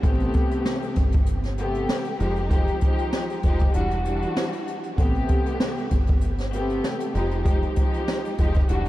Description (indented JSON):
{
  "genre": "hip hop, boom-bap hip-hop",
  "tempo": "97 BPM",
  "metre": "4/4",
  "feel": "swing 54% on 16ths",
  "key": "A minor",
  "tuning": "A4 = 441 Hz",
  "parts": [
    { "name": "warm studio string section", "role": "accompaniment", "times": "0.0-8.9 s", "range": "C3 to G4", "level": "-26 LUFS", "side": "left 1 dB", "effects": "high-pass filter, low-pass filter" },
    { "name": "deep dub fingered electric bass", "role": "bass", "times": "0.0-8.9 s", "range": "E1 to A1", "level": "-26 LUFS", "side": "equal", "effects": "none" },
    { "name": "jazz brush drum kit", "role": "drums", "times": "0.0-8.9 s", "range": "hi-hat, kick drum, snare drum", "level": "-23 LUFS", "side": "equal", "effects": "none" }
  ],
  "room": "light reverb, small room ambience",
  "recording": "vinyl crackle",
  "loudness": "-21 LUFS",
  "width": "side -16 dB against mid",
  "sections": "0.0-8.9 A section",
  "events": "none",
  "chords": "0.0 Am9; 2.2 Fm9; 3.7 Em9; 5.0 Am9; 7.1 Fm9",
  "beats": "| 0.03 0.65 1.27 1.89 | 2.51 3.13 3.75 4.36 | 4.98 5.60 6.22 6.84 | 7.46 8.07 8.69"
}